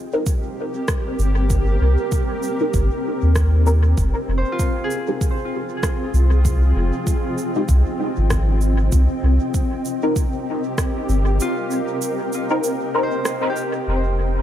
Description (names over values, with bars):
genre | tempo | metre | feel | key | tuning
ambient dub | 97 BPM | 4/4 | swing 58% on 16ths | F minor | A4 = 441 Hz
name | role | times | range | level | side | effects
granular cloud pad | sustained chords | 0.0-14.4 s | C4 to G5 | -24 LUFS | equal | built-in reverb
concert harp | arpeggios | 0.0-0.5, 4.4-7.7, 11.4-14.4 s | F4 to C5 | -29 LUFS | equal | low-pass filter, tape echo
filtered dub chord stab | stabs | 0.1-13.2 s | Ab3 to Bb4 | -25 LUFS | left 1 dB | phaser, ensemble chorus, dub echo
electronic cabasa and rim click | drums | 0.3-13.7 s | none | -30 LUFS | right 1 dB | overdrive, dub echo
electronic kick drum | drums | 0.3-10.9 s | none | -22 LUFS | equal | none
soft dub sub bass | bass | 1.2-14.4 s | F1 to Eb2 | -16 LUFS | equal | none
room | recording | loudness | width
light reverb | none | -17 LUFS | side -11 dB against mid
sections
0.0-13.9 A section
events
filter sweep on synth stab 0.0-13.9; filter sweep on harp 0.0-13.9; break 11.4-13.9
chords
0.0 Cm7; 4.0 Fm9; 8.9 Cm7; 13.9 F7sus2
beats
0.27 0.88 | 1.50 2.12 2.74 3.36 | 3.98 4.59 5.21 5.83 | 6.45 7.07 7.69 8.31 | 8.93 9.54 10.16 10.78 | 11.40 12.02 12.64 13.26 | 13.87